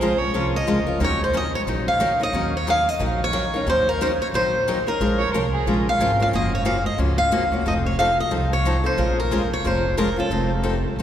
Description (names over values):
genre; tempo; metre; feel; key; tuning
acoustic string swing (jazz manouche); 181 BPM; 4/4; swing 59% on 8ths; Bb minor; A4 = 440 Hz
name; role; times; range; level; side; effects
picked swing-style acoustic guitar; melody; 0.0-11.0 s; Ab4 to F5; -22 LUFS; equal; none
dark violin; second line; 0.0-0.4, 5.2-5.7 s; Ab4 to Db5; -31 LUFS; right 3 dB; none
picked steel-string acoustic guitar; accompaniment; 0.0-11.0 s; Db3 to Bb4; -24 LUFS; left 2 dB; none
upright bass; bass; 0.0-11.0 s; F1 to Eb2; -25 LUFS; equal; none
room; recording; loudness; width
wet cathedral reverb, RT60 7.3 s; recorded in a church or concert hall; -19 LUFS; side -10 dB against mid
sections
0.0-11.0 A section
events
none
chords
0.0 Bbm7; 1.0 Ebm7; 5.0 Bbm7; 6.3 Gbmaj7; 7.7 F7; 9.0 Bbm7; 10.3 F7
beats
0.01 0.34 0.67 | 1.01 1.34 1.67 2.00 | 2.34 2.67 3.00 3.33 | 3.67 4.00 4.33 4.66 | 5.00 5.33 5.66 5.99 | 6.32 6.66 6.99 7.32 | 7.65 7.98 8.31 8.65 | 8.98 9.31 9.64 9.97 | 10.30 10.64 10.97